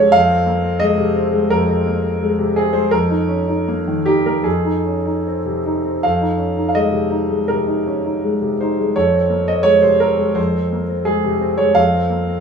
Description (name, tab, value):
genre	neoclassical minimalist piano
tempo	75-87 BPM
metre	4/4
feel	rubato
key	F minor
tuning	A4 = 441 Hz
part	warm grand piano	solo	0.0-12.4 s	F2 to F5	-15 LUFS	equal	none
room	wet studio reverb, RT60 0.7 s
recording	band playing live in one room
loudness	-15 LUFS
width	side -6 dB against mid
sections	0.0-6.0 A section; 6.0-12.4 A section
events	none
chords	0.1 Ab/F; 2.9 Eb5/F; 4.4 Fm7